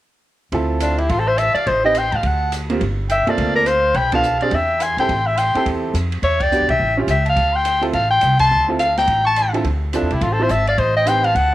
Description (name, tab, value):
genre	jazz, small-group swing and bop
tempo	211 BPM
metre	4/4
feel	swing 62% on 8ths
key	D minor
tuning	A4 = 439 Hz
part	clear grand piano	accompaniment	0.5-11.2 s	D3 to C5	-23 LUFS	right 3 dB	cassette tape
part	upright bass	bass	0.5-11.5 s	G1 to A2	-22 LUFS	equal	none
part	open jazz drum kit	drums	0.5-11.4 s	hi-hat, kick drum, ride cymbal, snare drum	-29 LUFS	right 1 dB	none
part	warm soprano saxophone	melody	0.8-11.5 s	D4 to A5	-17 LUFS	left 1 dB	cassette tape
part	brilliant trumpet	second line	0.8-11.5 s	F4 to C#6	-28 LUFS	right 2 dB	cassette tape
room	moderate spring reverb, RT60 1.3 s, small room ambience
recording	home recording on cassette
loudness	-15 LUFS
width	side -15 dB against mid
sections	0.5-9.6 A section; 9.6-11.5 A section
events	band accent 4.1, 6.4, 8.4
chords	0.5 Dm9; 1.7 Am7b5; 2.2 D7; 2.8 Gm11; 3.9 Bm7b5; 4.5 Eaug; 5.1 Am7; 6.2 Em7; 6.8 A7b13; 7.4 Dm9; 10.8 Am7b5